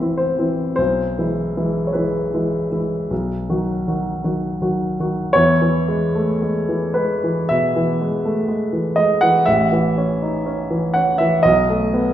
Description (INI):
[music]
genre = classical, romantic nocturne for solo piano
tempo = 51-62 BPM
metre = 4/4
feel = rubato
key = E major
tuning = A4 = 440 Hz
[part]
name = warm grand piano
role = solo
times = 0.0-12.1 s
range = A1 to F#5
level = -16 LUFS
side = equal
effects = none
[sound]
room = wet recital hall reverb, RT60 1.5 s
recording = recorded in a church or concert hall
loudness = -16 LUFS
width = side -11 dB against mid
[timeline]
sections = 0.0-5.4 A section; 5.4-12.1 A section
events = none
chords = 0.0 Am; 0.8 E/B; 3.1 B; 5.4 E; 9.5 A; 11.4 B7